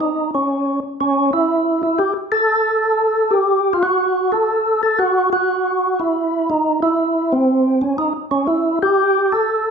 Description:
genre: jazz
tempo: 120 BPM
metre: 4/4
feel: swing 67% on 8ths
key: A mixolydian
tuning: A4 = 440 Hz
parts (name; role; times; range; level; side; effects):
- percussive tonewheel organ; solo; 0.0-9.7 s; C4 to A4; -15 LUFS; equal; overdrive, chorus vibrato, slow rotary speaker
room: moderate large studio reverb, RT60 1.2 s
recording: band playing live in one room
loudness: -15 LUFS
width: side -6 dB against mid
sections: 0.0-9.7 A section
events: none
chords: none

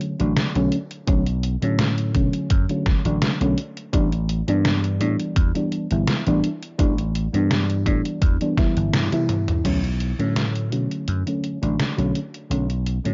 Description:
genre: vaporwave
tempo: 84 BPM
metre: 4/4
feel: swing 53% on 16ths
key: B minor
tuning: A4 = 442 Hz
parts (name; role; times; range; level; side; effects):
- mellow FM electric piano; accompaniment; 0.0-13.1 s; D3 to E4; -26 LUFS; equal; analog chorus, tape echo
- detuned 8-bit digital drum machine; drums; 0.0-13.1 s; crash cymbal, hi-hat, snare drum, toms; -28 LUFS; equal; vintage 12-bit sampler grit
- vintage slap bass; bass; 0.2-13.1 s; G1 to B2; -26 LUFS; equal; none
- electronic kick drum; drums; 1.1-8.7 s; none; -23 LUFS; equal; vintage 12-bit sampler grit
room: little or no reverb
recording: dry, gritty hardware recording, nothing above 7.5 kHz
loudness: -22 LUFS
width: mono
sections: 0.0-9.7 A section; 9.7-13.1 B section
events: drum fill 8.9-9.7; band accent 8.9-9.3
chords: 0.0 Bm9; 3.6 A9sus4; 9.7 Bm9

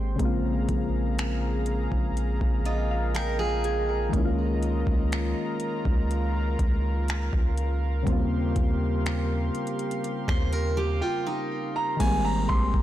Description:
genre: contemporary R&B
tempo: 61 BPM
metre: 4/4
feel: straight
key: unclear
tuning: A4 = 440 Hz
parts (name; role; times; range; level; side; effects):
- soft electric-piano-like synth keys; accompaniment; 0.0-12.8 s; Db3 to Ab5; -30 LUFS; left 2 dB; chorus
- warm analog pad; sustained chords; 0.0-12.8 s; Ab3 to C6; -35 LUFS; right 1 dB; chorus
- long sustained 808-style bass; bass; 0.0-12.8 s; Ab1 to Eb2; -27 LUFS; equal; none
- booming analog drum machine; drums; 0.2-12.8 s; crash cymbal, finger snaps, hi-hat, kick drum; -28 LUFS; equal; overdrive, soft clipping on snare
- picked steel-string acoustic guitar; arpeggios; 2.7-4.1, 10.3-12.0 s; Eb4 to C5; -31 LUFS; right 3 dB; ping-pong delay
- clear concert grand piano; melody; 11.0-12.8 s; G5 to C6; -28 LUFS; right 2 dB; ping-pong delay
room: digital ambience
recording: blown-out, overdriven recording, overdrive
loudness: -24 LUFS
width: side -13 dB against mid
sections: 0.0-12.0 A section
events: synth keys fill 2.2-4.1; drums muted 11.0-12.0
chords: 0.2 Bbm7; 4.1 Db69; 8.1 Eb13; 12.0 Abmaj9

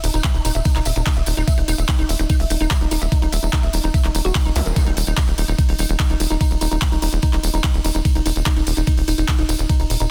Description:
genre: psychedelic trance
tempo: 146 BPM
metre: 4/4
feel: straight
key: unclear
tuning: A4 = 438 Hz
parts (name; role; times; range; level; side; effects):
- woody wave-folded pluck; riff; 0.0-10.0 s; Eb4 to Fb5; -28 LUFS; equal; chorus, sidechain pumping, dub echo
- tight sequencer bass; bass; 0.0-10.1 s; Eb1 to Db2; -23 LUFS; equal; none
- drum and bass drum kit; drums; 0.0-10.1 s; handclaps, hi-hat, ride cymbal; -29 LUFS; equal; overdrive, studio ambience
- tambourine; percussion; 0.0-10.1 s; none; -34 LUFS; equal; none
- electronic kick drum; drums; 0.2-9.8 s; none; -20 LUFS; equal; overdrive, studio ambience
- zap; sound effects; 4.6-4.7 s; none; -35 LUFS; equal; none
room: little or no reverb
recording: dense, heavily limited modern master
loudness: -19 LUFS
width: mono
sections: 0.0-10.1 A section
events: none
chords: 0.0 Eb5

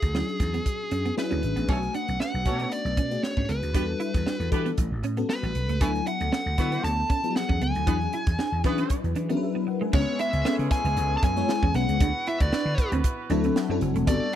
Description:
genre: polished 1980s jazz-funk pop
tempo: 116 BPM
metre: 4/4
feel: swing 54% on 16ths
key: unclear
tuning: A4 = 444 Hz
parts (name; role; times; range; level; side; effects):
- fuzz lead guitar; melody; 0.0-14.3 s; G#4 to A5; -30 LUFS; equal; distortion, slapback echo
- clean electric guitar; riff; 0.0-14.2 s; G#3 to E4; -33 LUFS; right 5 dB; ensemble chorus
- vintage slap bass; bass; 0.0-14.2 s; E1 to E3; -28 LUFS; equal; none
- crisp fusion drum kit; drums; 0.0-14.4 s; crash cymbal, hi-hat, kick drum, snare drum; -26 LUFS; right 1 dB; none
- FM electric piano with soft pad layer; accompaniment; 0.1-14.4 s; F3 to G#5; -29 LUFS; left 4 dB; ensemble chorus
- clear horn section; second line; 1.7-14.4 s; G#3 to C#5; -36 LUFS; right 3 dB; none
room: small room ambience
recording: dry, close 1970s-style studio recording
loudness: -23 LUFS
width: side -11 dB against mid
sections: 0.0-1.7 A section; 1.7-9.9 B section; 9.9-14.4 C section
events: FM electric piano fill 13.0-14.1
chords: 0.0 E13; 1.7 Bm9; 3.8 Em11; 4.8 A13; 5.8 D69; 7.9 E13; 9.9 C#m7; 12.0 D9

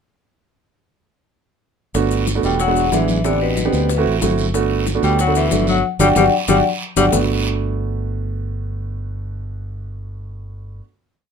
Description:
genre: Afro-Cuban jazz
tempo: 186 BPM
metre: 4/4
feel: straight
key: G major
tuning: A4 = 439 Hz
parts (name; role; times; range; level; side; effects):
- warm grand piano; accompaniment; 1.9-10.8 s; G#3 to G4; -21 LUFS; right 7 dB; none
- fingered electric bass; bass; 1.9-10.8 s; E1 to D2; -22 LUFS; equal; none
- bongos; percussion; 1.9-7.2 s; none; -27 LUFS; left 6 dB; none
- congas; percussion; 1.9-7.2 s; none; -25 LUFS; left 4 dB; none
- guiro; percussion; 1.9-7.2 s; none; -30 LUFS; right 5 dB; none
- maracas; percussion; 1.9-7.2 s; none; -29 LUFS; left 8 dB; none
- clear tenor saxophone; second line; 2.4-7.0 s; B2 to G3; -22 LUFS; left 7 dB; none
- vibraphone with medium mallets; melody; 2.5-7.1 s; B4 to G5; -20 LUFS; left 5 dB; none
room: light reverb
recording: minimal, uncompressed stereo recording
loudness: -16 LUFS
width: side -6 dB against mid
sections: 1.9-7.1 A section; 7.1-9.7 final chord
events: band accent 5.8-7.1; grand piano fill 6.2-7.1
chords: 1.9 Gmaj9; 2.6 E7; 3.2 Am11; 3.9 D9; 4.5 Gmaj9

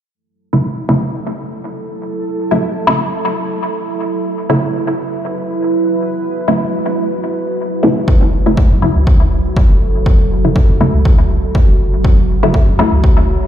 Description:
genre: dub techno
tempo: 121 BPM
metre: 4/4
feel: swing 55% on 16ths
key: F# minor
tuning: A4 = 442 Hz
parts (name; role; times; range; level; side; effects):
- deep dark ambient pad; sustained chords; 1.1-13.5 s; F#3 to C#5; -20 LUFS; right 2 dB; chorus, built-in reverb, sidechain pumping
- filtered dub chord stab; stabs; 0.5-13.0 s; C#3 to E4; -17 LUFS; equal; chorus, phaser, sidechain pumping, dub echo
- electronic kick drum; drums; 8.1-13.1 s; none; -11 LUFS; equal; none
- warm sub bass; bass; 8.3-13.4 s; F#1 to F#2; -15 LUFS; equal; sidechain pumping
room: light reverb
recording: played on a big sound system in a bare room, large studio reverb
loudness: -12 LUFS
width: side -11 dB against mid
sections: 0.1-13.5 A section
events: none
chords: 0.1 F#m7

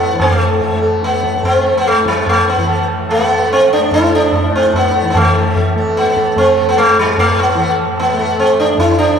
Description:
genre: indian classical, Hindustani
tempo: 147 BPM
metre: 3/4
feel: straight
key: A raga kafi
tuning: A4 = 437 Hz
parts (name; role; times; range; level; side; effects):
- sitar; melody; 0.0-9.2 s; G3 to A4; -12 LUFS; equal; none
- tanpura; drone; 0.0-9.2 s; A2 to A3; -22 LUFS; equal; none
- tabla; percussion; 0.2-8.9 s; none; -19 LUFS; equal; none
room: wet cathedral reverb, RT60 5.5 s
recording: recorded in a church or concert hall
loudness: -11 LUFS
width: side -7 dB against mid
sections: 0.0-5.2 A section; 5.2-9.2 B section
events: speeding up 0.0-9.2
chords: none

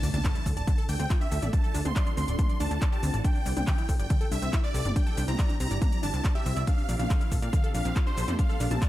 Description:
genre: uplifting trance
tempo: 140 BPM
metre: 4/4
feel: straight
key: D minor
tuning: A4 = 439 Hz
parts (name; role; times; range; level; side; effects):
- big supersaw lead; melody; 0.0-8.9 s; C5 to C6; -35 LUFS; right 1 dB; phaser, sidechain pumping, dub echo
- shimmering ambient pad; sustained chords; 0.0-8.9 s; C3 to A4; -39 LUFS; equal; chorus, built-in reverb, sidechain pumping
- wide unison pluck; arpeggios; 0.0-8.9 s; D3 to D5; -37 LUFS; left 1 dB; sidechain pumping, dub echo
- plucky analog bass; bass; 0.0-8.8 s; D1 to Bb2; -29 LUFS; equal; sidechain pumping
- techno drum kit; drums; 0.0-8.9 s; handclaps, hi-hat, shaker, toms; -37 LUFS; left 1 dB; none
- impact; sound effects; 0.0-1.5 s; none; -37 LUFS; equal; none
- electronic kick drum; drums; 0.2-8.9 s; none; -26 LUFS; equal; none
room: little or no reverb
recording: dark, warm production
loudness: -24 LUFS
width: side -15 dB against mid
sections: 0.0-8.9 A section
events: impact 0.0-1.5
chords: 0.0 Dm; 3.2 C; 6.7 Bb6

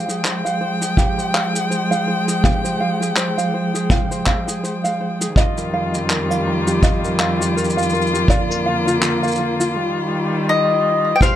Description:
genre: folktronica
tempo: 82 BPM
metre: 4/4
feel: swing 56% on 16ths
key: F dorian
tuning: A4 = 440 Hz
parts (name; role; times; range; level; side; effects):
- warm string quartet; sustained chords; 0.0-11.4 s; F2 to G5; -20 LUFS; left 1 dB; none
- tenor ukulele; arpeggios; 0.0-11.4 s; F4 to F5; -23 LUFS; right 2 dB; ping-pong delay, plate reverb
- shaker and handclaps; drums; 0.0-11.4 s; none; -24 LUFS; left 1 dB; none
- kick drum; drums; 1.0-11.4 s; none; -16 LUFS; equal; none
- mandolin; melody; 10.5-11.4 s; Eb5 to G5; -15 LUFS; left 3 dB; plate reverb
room: moderate small room reverb, RT60 0.5 s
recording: none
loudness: -16 LUFS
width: side -11 dB against mid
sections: 0.0-11.2 A section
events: filter sweep on ukulele 0.0-11.2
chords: 0.0 Fmadd9; 5.4 Ebadd9/F; 8.3 Bb/F; 9.8 Ebadd9

